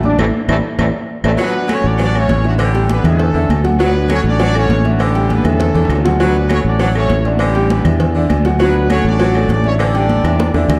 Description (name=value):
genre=latin, salsa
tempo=200 BPM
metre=4/4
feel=straight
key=D major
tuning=A4 = 440 Hz
part: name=clear baby grand piano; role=accompaniment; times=0.0-10.8 s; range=D3 to D6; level=-21 LUFS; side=equal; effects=none
part: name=sustaining fretless electric bass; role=bass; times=0.0-10.8 s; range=A1 to E2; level=-18 LUFS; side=equal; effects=none
part: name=agogo bells and timbales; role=percussion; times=0.0-10.8 s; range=none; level=-30 LUFS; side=equal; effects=none
part: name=congas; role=percussion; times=0.0-10.8 s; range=none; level=-23 LUFS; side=equal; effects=none
part: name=bright trombone section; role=melody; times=0.1-1.3 s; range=E3 to D4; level=-23 LUFS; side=equal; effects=none
part: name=claves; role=percussion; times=0.2-10.8 s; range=none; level=-32 LUFS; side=equal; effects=none
part: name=cowbell and bongos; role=percussion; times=0.2-10.8 s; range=none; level=-30 LUFS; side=equal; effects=none
part: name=warm horn section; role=melody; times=1.4-10.7 s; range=F#3 to D5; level=-23 LUFS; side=equal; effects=none
part: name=edgy saxophone section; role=second line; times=1.4-10.8 s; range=D3 to F#3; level=-26 LUFS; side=equal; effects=none
room=wet recital hall reverb, RT60 1.4 s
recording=dark, warm production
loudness=-14 LUFS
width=mono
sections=0.0-1.4 A section; 1.4-10.8 B section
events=drum fill 0.2-1.4, 5.3-6.2, 10.1-10.8; band accent 0.2-1.4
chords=0.2 Asus4; 1.4 Dmaj7; 2.6 A7sus4; 3.8 Dmaj7; 5.0 A7sus4; 6.2 Dmaj7; 7.4 A7sus4; 8.6 Dmaj7; 9.8 A7sus4